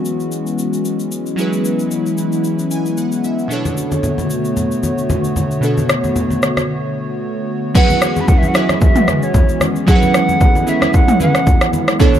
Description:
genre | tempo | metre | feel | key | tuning
amapiano | 113 BPM | 4/4 | swing 55% on 16ths | unclear | A4 = 436 Hz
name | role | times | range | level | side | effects
glassy digital keys | accompaniment | 0.0-12.2 s | B2 to G#5 | -20 LUFS | right 2 dB | chorus
hollow soft pad | sustained chords | 0.0-12.2 s | D3 to C#5 | -19 LUFS | left 1 dB | chorus, sidechain pumping
deep house drum kit | drums | 0.1-12.2 s | crash cymbal, kick drum, rim click, shaker, toms | -15 LUFS | equal | none
congas | percussion | 3.7-12.2 s | none | -22 LUFS | left 2 dB | none
silver concert flute | melody | 7.8-11.7 s | C#5 to B5 | -19 LUFS | right 2 dB | tape echo
room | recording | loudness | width
light reverb | dark, warm production | -13 LUFS | side -10 dB against mid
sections
0.0-7.8 A section; 7.8-12.2 B section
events
synth keys fill 2.4-3.5; break 6.7-7.8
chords
0.0 F#9sus4; 3.5 Bm9; 7.8 F#9sus4

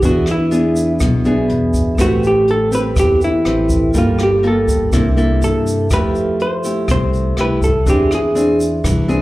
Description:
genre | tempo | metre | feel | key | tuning
bossa nova | 122 BPM | 4/4 | straight | E minor | A4 = 440 Hz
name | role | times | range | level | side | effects
hollow-body jazz guitar | melody | 0.0-8.6 s | E4 to C5 | -17 LUFS | equal | none
nylon-string guitar | accompaniment | 0.0-9.2 s | B2 to B4 | -18 LUFS | left 1 dB | none
vibraphone with medium hard mallets | accompaniment | 0.0-9.2 s | C4 to B5 | -25 LUFS | right 4 dB | slapback echo
upright bass | bass | 0.0-9.2 s | G1 to G2 | -21 LUFS | equal | none
jazz brush drum kit | drums | 0.0-9.2 s | hi-hat, kick drum, rim click | -20 LUFS | equal | none
egg shaker | percussion | 0.0-9.2 s | none | -33 LUFS | right 2 dB | none
room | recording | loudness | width
light reverb, studio reverb | live gig heard through the venue's PA, club reverb | -13 LUFS | side -18 dB against mid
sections
0.0-9.2 A section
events
vibraphone fill 1.0-2.0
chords
0.0 E7; 2.0 Am9; 3.9 Gm9; 4.9 C13; 5.9 Fmaj9; 7.9 Eaug7

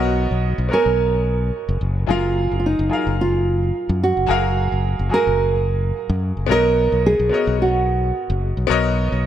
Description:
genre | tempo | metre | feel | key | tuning
sunset chillout | 109 BPM | 4/4 | swing 55% on 16ths | F# major | A4 = 441 Hz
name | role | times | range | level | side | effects
nylon-string guitar | melody | 0.0-9.3 s | D#4 to A#4 | -20 LUFS | right 3 dB | tape echo
clear grand piano | accompaniment | 0.0-9.3 s | F#3 to G#5 | -24 LUFS | moving between left 8 dB and right 3 dB | auto-pan, tape echo
modern bright fingered electric bass | bass | 0.0-9.3 s | F#1 to F#2 | -20 LUFS | left 1 dB | none
room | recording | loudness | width
light reverb, small room ambience | none | -17 LUFS | side -11 dB against mid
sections
0.0-9.3 A section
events
none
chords
0.0 Bmaj9; 2.1 F#maj9; 6.5 Bmaj9

